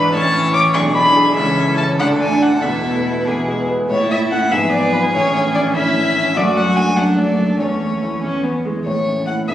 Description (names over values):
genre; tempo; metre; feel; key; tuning
quick classical-period movement for piano quintet; 96 BPM (dotted quarters); 6/8; straight; A major; A4 = 440 Hz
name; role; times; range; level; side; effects
warm violin; melody; 0.0-9.5 s; B4 to D6; -18 LUFS; left 2 dB; none
dark cello; second line; 0.0-9.5 s; B2 to A3; -23 LUFS; right 2 dB; none
rich violin; second line; 0.0-9.5 s; C#4 to C#5; -22 LUFS; left 1 dB; none
warm grand piano; accompaniment; 0.0-9.5 s; B1 to D6; -20 LUFS; equal; none
warm viola; accompaniment; 0.0-9.5 s; G#3 to E4; -22 LUFS; right 1 dB; none
room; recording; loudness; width
wet recital hall reverb, RT60 1.7 s; recorded on a phone in the room, club reverb, compression; -14 LUFS; side -12 dB against mid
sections
0.0-3.9 A section; 3.9-9.5 B section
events
none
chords
0.1 A; 0.7 E7/B; 1.4 A/C#; 2.0 D5; 2.6 Esus4; 3.3 E; 3.9 A; 4.5 G#dim7; 5.1 A; 6.4 D/F#; 7.6 A/E; 8.2 E; 8.9 A